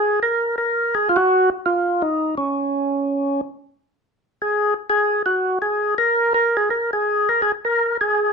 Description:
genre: jazz.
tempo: 167 BPM.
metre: 4/4.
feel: swing 64% on 8ths.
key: unclear.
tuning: A4 = 441 Hz.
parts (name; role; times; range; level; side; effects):
percussive tonewheel organ; solo; 0.0-8.3 s; Db4 to Bb4; -17 LUFS; equal; slow rotary speaker.
room: moderate club reverb, RT60 0.6 s.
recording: none.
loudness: -18 LUFS.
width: side -4 dB against mid.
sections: 0.0-8.3 A section.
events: none.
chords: none.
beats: | 0.22 0.58 0.94 1.30 | 1.66 2.01 2.37 2.73 | 3.09 3.45 3.81 4.17 | 4.53 4.89 5.25 5.60 | 5.96 6.32 6.68 7.04 | 7.40 7.76 8.12.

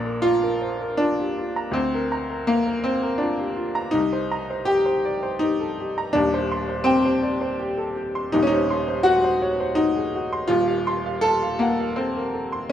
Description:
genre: classical, romantic character piece for solo piano.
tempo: 82 BPM.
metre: 3/4.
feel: rubato.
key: unclear.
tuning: A4 = 440 Hz.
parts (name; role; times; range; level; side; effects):
clear upright piano; solo; 0.0-12.7 s; Eb1 to C6; -20 LUFS; equal; none.
room: moderate large studio reverb, RT60 0.8 s.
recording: none.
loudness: -20 LUFS.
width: side -10 dB against mid.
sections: 0.0-12.7 A section.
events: none.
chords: 0.0 Bb; 1.7 Bb/D; 4.0 Cm7; 6.1 Cm/Eb; 8.3 Cdim/Eb; 10.5 F7/Eb.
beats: 0.24 1.00 | 1.75 2.49 3.21 | 3.95 4.69 5.42 | 6.15 6.85 7.58 | 8.33 9.05 9.77 | 10.50 11.24 11.98 | 12.72.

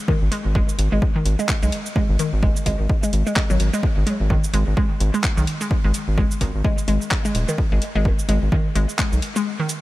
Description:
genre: minimal techno.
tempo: 128 BPM.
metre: 4/4.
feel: swing 58% on 16ths.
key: G# minor.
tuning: A4 = 440 Hz.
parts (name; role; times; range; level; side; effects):
hollow square pluck; riff; 0.1-9.6 s; D#3 to G#3; -24 LUFS; equal; chorus, sidechain pumping, tape echo.
electronic kick drum; drums; 0.1-9.1 s; none; -21 LUFS; equal; overdrive, studio reverb.
round analog bass; bass; 0.2-9.2 s; D#1 to B1; -20 LUFS; equal; sidechain pumping.
garage drum kit; drums; 0.3-9.8 s; cabasa, handclaps, hi-hat; -29 LUFS; equal; studio reverb.
room: digital ambience.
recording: none.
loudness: -18 LUFS.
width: side -17 dB against mid.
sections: 0.0-9.8 A section.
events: break 9.5-9.8.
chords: none.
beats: | 0.08 0.55 1.02 1.49 | 1.96 2.43 2.90 3.36 | 3.83 4.30 4.77 5.24 | 5.71 6.18 6.65 7.11 | 7.58 8.05 8.52 8.99 | 9.46.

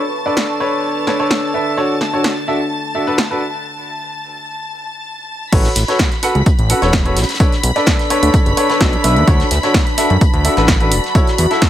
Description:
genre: piano house.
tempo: 128 BPM.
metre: 4/4.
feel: straight.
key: unclear.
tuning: A4 = 440 Hz.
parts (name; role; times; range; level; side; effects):
warm symphonic violin section; sustained chords; 0.0-11.7 s; A5 to B6; -23 LUFS; equal; sidechain pumping.
deep dark ambient pad; texture; 0.0-11.7 s; C#4 to C#6; -25 LUFS; equal; chorus, built-in reverb, sidechain pumping.
clear baby grand piano; riff; 0.3-11.7 s; D4 to F#5; -18 LUFS; equal; vintage 12-bit sampler grit, sidechain pumping, tape echo.
punchy analog drum machine; drums; 0.4-11.7 s; crash cymbal, hi-hat, snare drum; -19 LUFS; equal; none.
fat analog bass; bass; 5.5-11.5 s; E1 to F#2; -15 LUFS; equal; sidechain pumping.
electronic kick drum; drums; 5.5-11.7 s; none; -14 LUFS; equal; none.
warm soul drum kit; drums; 5.5-11.7 s; hi-hat, snare drum; -28 LUFS; left 1 dB; none.
room: light reverb.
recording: none.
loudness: -12 LUFS.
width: side -12 dB against mid.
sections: 0.0-5.5 A section; 5.5-11.7 B section.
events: break 3.6-5.5; drop 5.5-11.7.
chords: 0.0 Dmaj7; 3.4 N.C.; 5.5 A69; 7.2 Bm9; 9.3 Dmaj7; 10.9 E9sus4.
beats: 0.37 0.84 1.31 | 1.77 2.24 2.71 3.18 | 3.65 4.12 4.59 5.06 | 5.53 5.99 6.46 6.93 | 7.40 7.87 8.34 8.81 | 9.28 9.74 10.21 10.68 | 11.15 11.62.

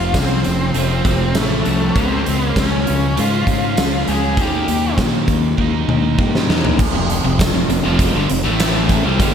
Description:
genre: classic rock.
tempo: 99 BPM.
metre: 4/4.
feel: straight.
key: unclear.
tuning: A4 = 440 Hz.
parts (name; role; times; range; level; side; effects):
octave-fuzz lead guitar; melody; 0.0-5.0 s; A3 to Ab4; -22 LUFS; left 1 dB; distortion.
biting overdriven guitar; riff; 0.0-9.3 s; F2 to Eb4; -23 LUFS; right 9 dB; slapback echo.
crunchy overdriven guitar; riff; 0.0-9.3 s; F2 to Eb4; -21 LUFS; left 7 dB; spring reverb.
fuzz fingered electric bass; bass; 0.0-9.3 s; F1 to Bb2; -22 LUFS; equal; overdrive.
big rock drum kit; drums; 0.1-9.3 s; crash cymbal, hi-hat, kick drum, snare drum, tambourine, toms; -18 LUFS; equal; none.
biting overdriven guitar; riff; 6.9-9.3 s; F2 to A3; -23 LUFS; right 1 dB; slapback echo.
tambourine; percussion; 7.4-8.7 s; none; -40 LUFS; left 6 dB; none.
room: moderate lush hall reverb, RT60 1.9 s, small room ambience.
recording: big arena sound.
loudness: -14 LUFS.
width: side -8 dB against mid.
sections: 0.0-6.8 A section; 6.8-9.3 B section.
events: drum fill 5.6-6.8.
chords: 0.0 F; 2.0 Db; 4.4 Eb; 6.8 F5; 8.4 A5.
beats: 0.14 0.75 1.35 | 1.96 2.56 3.17 3.77 | 4.38 4.98 5.59 6.19 | 6.79 7.39 8.00 8.60 | 9.20.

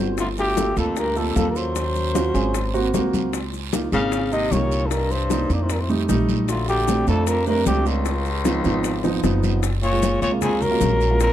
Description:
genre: Afro-Cuban jazz.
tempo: 152 BPM.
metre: 4/4.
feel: straight.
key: unclear.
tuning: A4 = 440 Hz.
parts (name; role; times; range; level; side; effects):
dark grand piano; accompaniment; 0.0-11.2 s; F3 to C5; -24 LUFS; right 4 dB; none.
upright bass; bass; 0.0-11.3 s; Gb1 to F2; -24 LUFS; equal; none.
breathy trumpet; melody; 0.2-11.3 s; F4 to F5; -25 LUFS; equal; tape echo.
warm baritone saxophone; second line; 0.2-11.3 s; Db2 to Db3; -28 LUFS; left 5 dB; none.
bongos; percussion; 0.2-11.3 s; none; -31 LUFS; left 6 dB; none.
congas; percussion; 0.2-11.3 s; none; -29 LUFS; left 5 dB; none.
guiro; percussion; 0.2-11.3 s; none; -36 LUFS; right 9 dB; none.
maracas; percussion; 0.2-11.3 s; none; -36 LUFS; left 8 dB; none.
room: moderate studio reverb, RT60 0.8 s.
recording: dark, warm production.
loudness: -19 LUFS.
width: side -12 dB against mid.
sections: 0.0-9.6 A section; 9.6-11.3 B section.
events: drum fill 9.0-9.6.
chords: 0.2 Gm7; 1.8 Ebm7; 2.5 Ab7; 3.3 Db69; 4.9 Cm7; 5.7 F7; 6.5 Bbmaj7; 8.1 Db9; 9.6 F#maj9.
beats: | 0.18 0.57 0.97 1.36 | 1.76 2.15 2.55 2.94 | 3.33 3.73 4.12 4.52 | 4.91 5.30 5.70 6.09 | 6.49 6.88 7.27 7.67 | 8.06 8.45 8.85 9.24 | 9.63 10.03 10.42 10.81 | 11.21.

